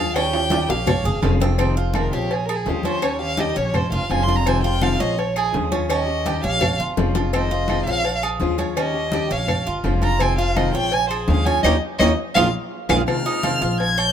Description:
latin, Cuban son and guajira; 167 BPM; 4/4; straight; F minor; A4 = 441 Hz
warm violin; melody; 0.0-14.1 s; G4 to Ab6; -23 LUFS; right 1 dB
fingerpicked steel-string acoustic guitar; accompaniment; 0.0-13.8 s; C3 to G4; -26 LUFS; left 5 dB
Cuban tres; arpeggios; 0.0-14.1 s; C4 to Db5; -26 LUFS; right 4 dB
upright bass; bass; 0.0-14.1 s; F1 to Eb2; -24 LUFS; equal
claves; percussion; 0.2-14.1 s; -31 LUFS; left 4 dB
congas; percussion; 0.2-14.1 s; -28 LUFS; left 2 dB
cowbell and bongos; percussion; 0.2-14.0 s; -29 LUFS; left 5 dB
timbales and agogo bells; percussion; 0.2-14.1 s; -29 LUFS; right 8 dB
light reverb; minimal, uncompressed stereo recording; -18 LUFS; side -9 dB against mid
0.0-1.6 A section; 1.6-13.1 B section; 13.1-14.1 A section
drum fill 0.2-1.6, 6.6-7.3, 11.6-13.1; violin solo 1.6-13.1; band accent 11.6-13.1
0.2 Eb7; 0.9 Bbm7; 1.6 Fm7; 2.3 Bbm7; 3.0 Eb7; 3.7 Bbm7; 4.5 Fm7; 5.2 Bbm7; 5.9 Eb7; 6.6 Bbm7; 7.3 Fm7; 8.1 Bbm7; 8.8 Eb7; 9.5 Bbm7; 10.2 Fm7; 10.9 Bbm7; 11.6 Eb7; 12.4 Bbm7; 13.1 Fm7

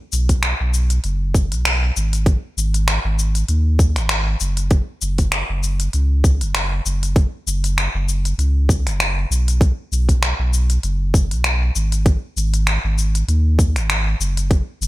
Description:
organic downtempo; 98 BPM; 4/4; swing 56% on 16ths; A4 = 438 Hz
warm sub bass; bass; 0.1-14.9 s; F#1 to D#2; -18 LUFS; equal; sidechain pumping
organic electronic drum kit; drums; 0.1-14.9 s; cabasa, finger snaps, hi-hat; -22 LUFS; left 1 dB; gated reverb
electronic kick drum; drums; 0.3-14.6 s; -15 LUFS; equal
little or no reverb; bright 1980s-style digital production; -16 LUFS; side -18 dB against mid
0.0-14.9 A section

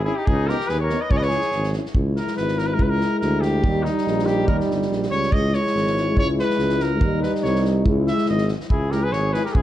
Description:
balkan folk, Balkan brass band; 142 BPM; 2/4; swing 54% on 16ths; C# dorian sharp4; A4 = 440 Hz
clear trumpet; melody; 0.0-9.6 s; D#4 to E5; -25 LUFS; equal
clear flugelhorn; second line; 0.0-1.8, 8.7-9.6 s; D#4 to B4; -29 LUFS; left 4 dB
mellow tuba; bass; 0.0-9.6 s; G1 to D#2; -24 LUFS; equal
dark trombone; accompaniment; 0.1-9.4 s; G3 to C#4; -26 LUFS; right 3 dB
warm French horn; accompaniment; 0.1-9.4 s; D#4 to E4; -28 LUFS; left 7 dB
natural country drum kit; percussion; 0.3-9.6 s; kick drum, snare drum; -25 LUFS; equal
light reverb; dark, warm production; -18 LUFS; side -12 dB against mid
0.0-2.0 A section; 2.0-8.7 B section
trumpet solo 2.0-8.7
0.3 Bmaj13/C#; 1.1 C#m; 3.6 D#; 5.3 C#m; 7.0 D#; 7.9 C#m

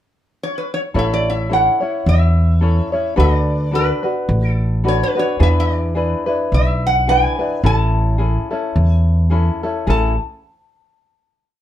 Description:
Hawaiian; 108 BPM; 4/4; swing 56% on 8ths; A major; A4 = 444 Hz
metal-body resonator slide guitar; melody; 0.4-10.2 s; B4 to A5; -20 LUFS; equal
tenor ukulele; accompaniment; 0.9-10.1 s; C#4 to C#5; -20 LUFS; left 2 dB
upright bass; bass; 0.9-10.2 s; A1 to E2; -16 LUFS; equal
light reverb; dark, warm production; -14 LUFS; side -11 dB against mid
0.0-0.9 pickup bar; 0.9-9.9 A section; 9.9-11.6 final chord
0.0 N.C.; 0.9 A; 3.2 D6; 5.4 E7; 7.6 Amaj7

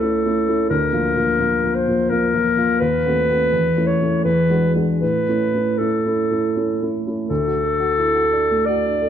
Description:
classical, romantic duo for clarinet and grand piano; 77-92 BPM; 3/4; rubato; A4 = 444 Hz
warm clarinet; melody; 0.0-9.1 s; A4 to D5; -19 LUFS; left 2 dB
dark grand piano; accompaniment; 0.0-9.1 s; C#2 to A4; -20 LUFS; right 1 dB
wet scoring stage reverb, RT60 1.8 s; dark, warm production; -16 LUFS; side -9 dB against mid
0.0-7.3 A section; 7.3-9.1 B section
0.0 A/C#; 0.7 Bb/D; 2.8 D#dim7; 3.5 A/E; 4.3 E9; 5.0 A; 7.3 D

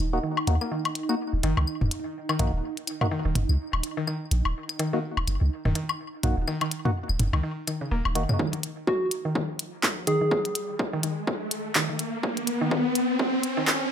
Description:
minimal techno; 125 BPM; 4/4; swing 58% on 16ths; Eb minor; A4 = 440 Hz
punchy sub bass; bass; 0.0-8.3 s; Eb1 to Eb2; -25 LUFS; equal; sidechain pumping
swarming drone; texture; 0.0-8.4 s; Eb4; -37 LUFS; right 2 dB; built-in reverb, sidechain pumping
percussive organ stab; stabs; 0.1-8.2 s; Bb3 to Gb4; -30 LUFS; left 2 dB; chorus, phaser, vintage 12-bit sampler grit, digital delay
mallet-like synth pluck; riff; 0.2-13.7 s; Db3 to Bb3; -32 LUFS; equal; chorus, cassette tape, sidechain pumping, dub echo
electronic woodblock, claves and toms; percussion; 0.4-8.4 s; -29 LUFS; left 1 dB; small room ambience, digital delay
minimal click drum kit; drums; 0.5-13.8 s; handclaps, hi-hat; -27 LUFS; equal; low-pass filter on cymbals, small room ambience, low-pass filter on hats, low-pass filter on snare
electronic kick drum; drums; 8.4-13.8 s; -30 LUFS; equal; overdrive, high-pass filter on kick, small room ambience, high-pass filter on room
riser; sound effects; 10.5-13.9 s; -28 LUFS; equal
soft struck synth lead; melody; 8.9-10.8 s; Gb4 to Ab4; -25 LUFS; equal; chorus, tremolo, cassette tape, digital delay
moderate studio reverb, RT60 0.6 s; high-pass filter; -24 LUFS; side -9 dB against mid
0.0-8.4 A section; 8.4-13.9 B section
build-up 8.4-13.9; filter sweep on synth arpeggio sound 8.4-13.9; riser 10.5-13.9
0.0 Ebm; 8.4 N.C.

